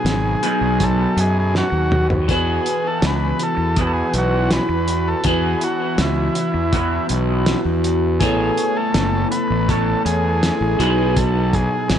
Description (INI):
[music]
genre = psychedelic rock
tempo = 81 BPM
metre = 4/4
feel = straight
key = E major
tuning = A4 = 445 Hz
[part]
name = combo organ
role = melody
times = 0.0-12.0 s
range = E4 to B4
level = -23 LUFS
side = equal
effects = analog delay
[part]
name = electric guitar through a small old amp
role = riff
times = 0.0-12.0 s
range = B2 to C#5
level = -21 LUFS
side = equal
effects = phaser, double-tracked left and right, analog delay
[part]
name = fuzz fingered electric bass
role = bass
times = 0.0-12.0 s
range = F#1 to F#2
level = -21 LUFS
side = equal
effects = overdrive
[part]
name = cloth-damped thuddy drum kit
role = drums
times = 0.1-12.0 s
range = hi-hat, kick drum, snare drum, toms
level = -22 LUFS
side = equal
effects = none
[sound]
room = light reverb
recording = echo-heavy mix, nothing above 10.8 kHz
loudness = -16 LUFS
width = side -9 dB against mid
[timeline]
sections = 0.0-12.0 A section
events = drum fill 1.5-2.3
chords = 0.0 B; 2.3 Esus2; 8.2 Aadd9; 10.8 B